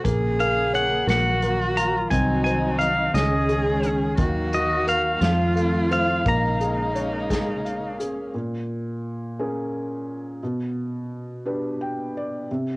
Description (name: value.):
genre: acoustic folk-pop ballad.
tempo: 58 BPM (dotted quarters).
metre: 6/8.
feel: straight.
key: Bb minor.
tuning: A4 = 440 Hz.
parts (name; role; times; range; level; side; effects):
dark cello; second line; 0.0-8.3 s; Db4 to Ab4; -27 LUFS; right 1 dB; cassette tape.
felt-muted upright piano; accompaniment; 0.0-12.8 s; Bb2 to G5; -27 LUFS; equal; cassette tape.
dark chamber string section; sustained chords; 0.0-8.3 s; Db3 to F5; -30 LUFS; left 1 dB; cassette tape.
unplugged drum kit; drums; 0.0-8.2 s; hi-hat, kick drum, snare drum; -28 LUFS; equal; cassette tape.
fingered electric bass; bass; 0.1-8.3 s; Bb1 to F2; -26 LUFS; equal; none.
pedal steel guitar; melody; 0.4-7.6 s; Eb5 to Bb5; -23 LUFS; equal; cassette tape.
room: light reverb.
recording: home recording on cassette.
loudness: -21 LUFS.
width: side -24 dB against mid.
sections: 0.0-8.3 A section; 8.3-12.8 B section.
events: none.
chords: 0.0 Bbm; 1.1 Ebmadd9/Bb; 2.1 Cdim; 3.1 Dbsus2; 4.2 Ebmadd9; 5.2 F7; 6.3 Bbm7; 10.4 G/B.